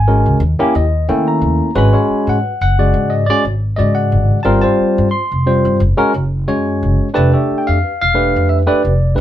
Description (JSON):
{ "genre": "electric jazz fusion", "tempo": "89 BPM", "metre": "4/4", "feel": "swing 54% on 16ths", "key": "unclear", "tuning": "A4 = 440 Hz", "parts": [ { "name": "barky tine electric piano", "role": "accompaniment", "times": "0.0-9.2 s", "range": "C#3 to C6", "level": "-14 LUFS", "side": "equal", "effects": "none" }, { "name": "upright bass", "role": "bass", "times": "0.0-9.2 s", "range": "E1 to D#3", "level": "-15 LUFS", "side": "equal", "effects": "none" } ], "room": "moderate studio ambience, RT60 0.5 s", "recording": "band playing live in one room", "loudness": "-12 LUFS", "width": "side -12 dB against mid", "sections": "0.0-9.2 A section", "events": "tine electric piano fill 0.4-1.8", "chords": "0.4 D#7b9; 1.8 G#m7; 4.5 G7(no3); 5.8 F#sus2; 7.2 Fmaj9#11" }